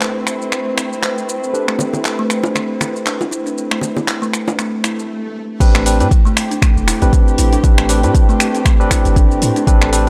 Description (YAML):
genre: afro house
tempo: 118 BPM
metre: 4/4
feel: swing 56% on 16ths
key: A minor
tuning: A4 = 438 Hz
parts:
  - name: muted studio string section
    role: sustained chords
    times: 0.0-10.1 s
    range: A3 to B4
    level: -26 LUFS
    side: equal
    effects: sidechain pumping
  - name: barky tine electric piano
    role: stabs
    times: 0.0-10.1 s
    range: C4 to B4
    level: -24 LUFS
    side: equal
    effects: sidechain pumping, tape echo
  - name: deep house drum kit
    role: drums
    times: 0.0-10.0 s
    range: crash cymbal, finger snaps, handclaps, hi-hat, shaker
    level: -23 LUFS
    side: equal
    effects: overdrive
  - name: buzzing kalimba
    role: arpeggios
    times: 1.7-10.1 s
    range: A3 to E4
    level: -24 LUFS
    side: equal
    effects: sidechain pumping, tape echo
  - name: bongos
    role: percussion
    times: 1.8-4.6 s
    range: none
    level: -25 LUFS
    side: equal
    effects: none
  - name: swell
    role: sound effects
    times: 4.8-5.6 s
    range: none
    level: -33 LUFS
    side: equal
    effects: none
  - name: warm 808-style bass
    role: bass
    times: 5.6-10.1 s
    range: E1 to A2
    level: -18 LUFS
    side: equal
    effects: sidechain pumping
  - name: electronic kick drum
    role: drums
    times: 5.6-9.8 s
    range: none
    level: -14 LUFS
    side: equal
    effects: overdrive
room: digital ambience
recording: dry, gritty hardware recording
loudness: -15 LUFS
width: mono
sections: 0.0-5.6 A section; 5.6-10.1 B section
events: swell 4.8-5.6; break 5.1-5.6; drop 5.6-10.1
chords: 0.0 Am11